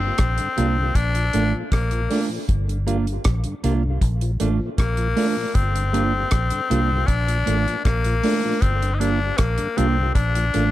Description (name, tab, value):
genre	roots reggae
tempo	78 BPM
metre	4/4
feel	straight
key	G minor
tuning	A4 = 436 Hz
part	raspy tenor saxophone	melody	0.0-10.7 s	Bb3 to Eb4	-24 LUFS	left 4 dB	tape echo
part	mellow tonewheel organ	accompaniment	0.0-10.6 s	G2 to F4	-30 LUFS	left 2 dB	overdrive, chorus vibrato, slow rotary speaker, tape echo
part	vintage muted fingered electric bass	bass	0.0-10.7 s	G1 to C2	-22 LUFS	equal	none
part	deep reggae drum kit	drums	0.2-10.7 s	hi-hat, kick drum, rim click	-23 LUFS	equal	none
part	mellow electric guitar	accompaniment	0.6-10.7 s	A3 to F4	-26 LUFS	right 6 dB	tape echo
room	light reverb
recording	none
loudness	-18 LUFS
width	side -14 dB against mid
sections	0.0-10.7 A section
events	none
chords	0.0 Gm7; 1.0 Bbmaj7; 2.5 Gm7; 4.0 Bbmaj7; 5.6 Gm7; 7.1 Bbmaj7; 8.6 Gm7; 10.2 Bbmaj7